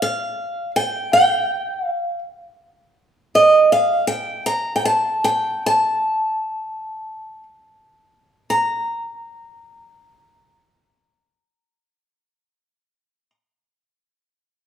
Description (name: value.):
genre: folk.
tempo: 36-54 BPM (dotted quarters).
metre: 6/8.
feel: straight.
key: unclear.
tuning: A4 = 437 Hz.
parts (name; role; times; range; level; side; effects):
picked old ladder-braced acoustic guitar; melody; 0.0-13.3 s; Eb5 to Bb5; -17 LUFS; right 1 dB; none.
room: wet large studio reverb, RT60 1.2 s.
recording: band playing live in one room.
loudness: -17 LUFS.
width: side -9 dB against mid.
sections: 0.0-8.5 A section; 8.5-11.8 B section.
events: slowing down 3.3-8.5.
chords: none.